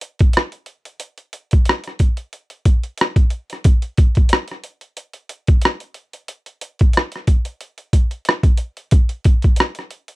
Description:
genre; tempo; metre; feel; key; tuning
R&B; 91 BPM; 4/4; swing 55% on 16ths; none; none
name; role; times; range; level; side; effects
boom bap sampler-style drum kit; drums; 0.0-10.2 s; hi-hat, kick drum, rim click; -14 LUFS; equal; none
room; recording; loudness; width
little or no reverb; dry, close 1970s-style studio recording; -15 LUFS; side -20 dB against mid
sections
0.0-3.6 A section; 3.6-10.2 A section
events
none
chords
none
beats
0.35 | 1.01 1.67 2.33 2.99 | 3.65 4.31 4.97 5.63 | 6.29 6.95 7.61 8.27 | 8.93 9.58

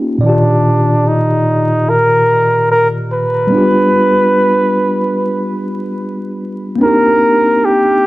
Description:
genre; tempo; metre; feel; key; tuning
hip hop; 73 BPM; 4/4; swing 57% on 16ths; Eb major; A4 = 441 Hz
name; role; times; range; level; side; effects
mellow tine electric piano; accompaniment; 0.0-8.1 s; Bb2 to D5; -14 LUFS; equal; medium stereo tremolo, low-pass filter, cassette tape
breathy flugelhorn; melody; 0.3-8.1 s; D4 to Cb5; -12 LUFS; equal; low-pass filter, cassette tape
room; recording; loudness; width
moderate studio reverb, RT60 0.5 s; home recording on cassette, vinyl crackle; -10 LUFS; side -18 dB against mid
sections
0.2-8.1 A section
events
none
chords
0.2 Ebmaj7; 3.5 G7; 6.8 Cm7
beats
| 0.23 1.05 1.87 2.69 | 3.52 4.34 5.16 5.98 | 6.80 7.63

